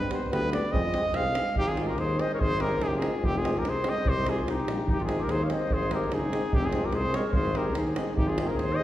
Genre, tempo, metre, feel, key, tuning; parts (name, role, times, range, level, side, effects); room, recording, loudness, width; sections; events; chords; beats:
balkan folk, Balkan brass band; 145 BPM; 2/4; swing 55% on 16ths; Ab major; A4 = 440 Hz
mellow cornet; melody; 0.0-8.8 s; G4 to F5; -30 LUFS; equal
warm tuba; bass; 0.0-8.8 s; F1 to G2; -31 LUFS; equal
davul; percussion; 0.0-8.7 s; -31 LUFS; right 1 dB
bright trombone; accompaniment; 0.1-8.8 s; B3 to Eb4; -38 LUFS; left 3 dB
warm euphonium; accompaniment; 0.1-8.8 s; G3 to Ab3; -37 LUFS; right 2 dB
warm clarinet; second line; 1.6-8.8 s; C4 to Db5; -33 LUFS; left 3 dB
wet recital hall reverb, RT60 1.6 s; heard from further back in the room; -25 LUFS; side -14 dB against mid
0.0-1.6 A section; 1.6-8.2 B section
cornet solo 0.0-1.6
0.0 G; 0.7 Fm; 1.6 Ab; 3.2 Fm; 4.0 Cm; 4.9 Ab; 6.5 Fm; 7.3 Ab
0.33 | 0.74 1.16 | 1.57 1.98 | 2.40 2.81 | 3.22 3.63 | 4.05 4.46 | 4.87 5.29 | 5.70 6.11 | 6.53 6.94 | 7.35 7.76 | 8.17 8.58